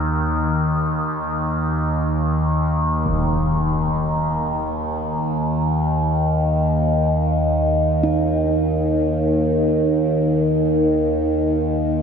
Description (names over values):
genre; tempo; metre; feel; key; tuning
dark ambient drone; free time; none; none; unclear; A4 = 439 Hz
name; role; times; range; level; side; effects
bronze singing bowl; arpeggios; 0.0-12.0 s; Eb3 to Eb4; -26 LUFS; right 3 dB; diffuse ambient delay
overtone-sweeping drone; drone; 0.0-12.0 s; Eb2 to Eb3; -18 LUFS; equal; chorus, built-in reverb
impact; percussion; 3.1-3.3 s; none; -31 LUFS; equal; low-pass filter on sfx
room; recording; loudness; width
wet huge ambient reverb, RT60 7.1 s; none; -17 LUFS; side -6 dB against mid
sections
0.0-12.0 A section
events
none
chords
none